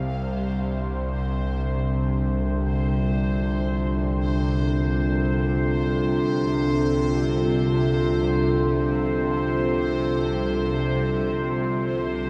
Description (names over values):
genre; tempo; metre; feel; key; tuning
dark ambient drone; free time; none; none; unclear; A4 = 440 Hz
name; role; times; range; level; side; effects
bowed-like drone; drone; 0.0-12.3 s; C2 to C3; -26 LUFS; equal; built-in reverb
bubbling stepped-filter texture; texture; 0.0-12.3 s; C5 to F5; -35 LUFS; equal; chorus, built-in reverb
dark analog pad; sustained chords; 0.9-12.3 s; D4 to A4; -28 LUFS; equal; chorus
room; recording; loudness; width
wet cathedral reverb, RT60 6.2 s; none; -24 LUFS; mono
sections
0.0-12.3 A section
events
filter sweep on synth drone 0.0-12.3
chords
0.1 F